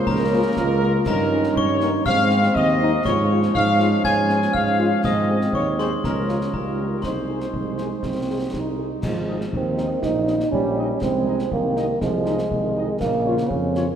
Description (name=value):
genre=military-style march for wind band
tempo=121 BPM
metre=2/4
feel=straight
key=Ab major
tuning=A4 = 440 Hz
part: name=warm trumpet section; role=melody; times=0.0-13.8 s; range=Bb4 to Ab5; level=-26 LUFS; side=equal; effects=none
part: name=glockenspiel with hard plastic mallets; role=second line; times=0.0-8.7 s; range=Bb5 to Ab6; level=-28 LUFS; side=left 6 dB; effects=none
part: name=mellow hollow small flute group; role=second line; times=0.0-8.7 s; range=Bb4 to Ab5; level=-28 LUFS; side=left 1 dB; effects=none
part: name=warm trombone section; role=sustained chords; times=0.0-14.0 s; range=Db3 to Eb4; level=-28 LUFS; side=right 2 dB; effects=none
part: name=warm euphonium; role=second line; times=0.1-14.0 s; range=Ab3 to F4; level=-25 LUFS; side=right 3 dB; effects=none
part: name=warm tuba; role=bass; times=0.1-13.9 s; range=Ab1 to Ab2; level=-24 LUFS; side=right 1 dB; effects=none
part: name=concert snare drum, concert bass drum and clash cymbals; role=drums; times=0.1-13.9 s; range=none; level=-30 LUFS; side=left 1 dB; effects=none
part: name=warm French horn section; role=accompaniment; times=0.3-13.9 s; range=F3 to Ab4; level=-31 LUFS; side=left 4 dB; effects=none
room=wet concert hall reverb, RT60 2.4 s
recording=none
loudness=-18 LUFS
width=side -8 dB against mid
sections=0.0-9.0 A section; 9.0-14.0 A section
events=none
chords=0.0 Bbm/Db; 1.1 Eb7/G; 2.1 Ab; 3.1 Db/Ab; 5.0 Ab; 6.0 Bbm/Db; 6.5 Eb7/Db; 7.0 Ab/C; 9.0 Ab; 10.0 Eb7/Bb; 11.0 Ab/C; 13.0 Bbm